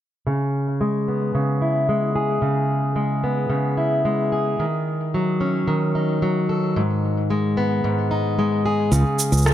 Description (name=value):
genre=folktronica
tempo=111 BPM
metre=4/4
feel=straight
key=C# minor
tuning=A4 = 440 Hz
part: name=fingerpicked plugged-in steel-string acoustic guitar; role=arpeggios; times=0.3-9.5 s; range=G#2 to A4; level=-19 LUFS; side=equal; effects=low-pass filter, ping-pong delay
part: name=fingered electric bass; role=bass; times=8.9-9.5 s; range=C#2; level=-16 LUFS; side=right 1 dB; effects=none
part: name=electronic shaker and rim click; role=drums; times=8.9-9.5 s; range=none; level=-22 LUFS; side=right 3 dB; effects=none
room=moderate studio reverb, RT60 0.6 s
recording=none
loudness=-19 LUFS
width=side -11 dB against mid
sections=0.3-9.5 A section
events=filter sweep on steel-string acoustic guitar 0.3-9.5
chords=0.3 C#m7; 4.6 D#m7b5; 6.8 G#m; 8.9 C#7(no3)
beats=| 0.27 0.81 1.35 1.89 | 2.43 2.97 3.51 4.05 | 4.59 5.13 5.68 6.22 | 6.76 7.30 7.84 8.38 | 8.92 9.46